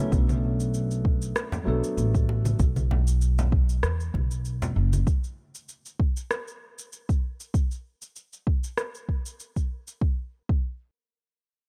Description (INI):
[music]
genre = organic downtempo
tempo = 97 BPM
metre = 4/4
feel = swing 55% on 16ths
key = B minor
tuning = A4 = 440 Hz
[part]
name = felt-muted upright piano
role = accompaniment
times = 0.0-2.6 s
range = F#3 to A4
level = -34 LUFS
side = equal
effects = sidechain pumping, delay
[part]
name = upright bass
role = bass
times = 0.1-5.0 s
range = F#1 to E2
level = -27 LUFS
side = equal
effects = sidechain pumping
[part]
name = electronic kick drum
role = drums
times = 0.1-10.7 s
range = none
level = -26 LUFS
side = equal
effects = none
[part]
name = electronic shaker and rim click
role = drums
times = 0.1-10.0 s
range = none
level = -36 LUFS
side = equal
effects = none
[part]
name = congas and bongos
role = percussion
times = 0.3-5.0 s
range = none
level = -34 LUFS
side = equal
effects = none
[sound]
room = small room ambience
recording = none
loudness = -26 LUFS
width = mono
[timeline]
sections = 0.1-10.0 A section; 10.0-11.7 B section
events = none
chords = 0.1 Bm7; 5.1 N.C.